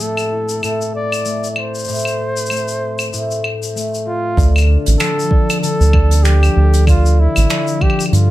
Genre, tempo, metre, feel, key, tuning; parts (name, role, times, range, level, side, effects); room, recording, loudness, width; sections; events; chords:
folktronica; 96 BPM; 4/4; swing 56% on 16ths; D minor; A4 = 440 Hz
breathy flugelhorn; melody; 0.0-8.3 s; E4 to D5; -21 LUFS; right 1 dB; vintage 12-bit sampler grit, tape echo
concert harp; arpeggios; 0.0-8.3 s; A2 to A4; -21 LUFS; left 3 dB; tape echo
soft brush drum kit; drums; 0.0-8.3 s; claves, finger snaps, hi-hat, shaker; -22 LUFS; left 1 dB
large celesta; second line; 4.4-8.3 s; D5; -28 LUFS; right 8 dB; tape echo
round analog bass; bass; 4.4-8.3 s; A1 to G2; -10 LUFS; right 1 dB
electronic kick drum; drums; 4.4-8.0 s; -14 LUFS; right 1 dB
light reverb; -13 LUFS; side -15 dB against mid
0.0-4.4 A section; 4.4-8.3 B section
0.0 Am; 4.4 Dm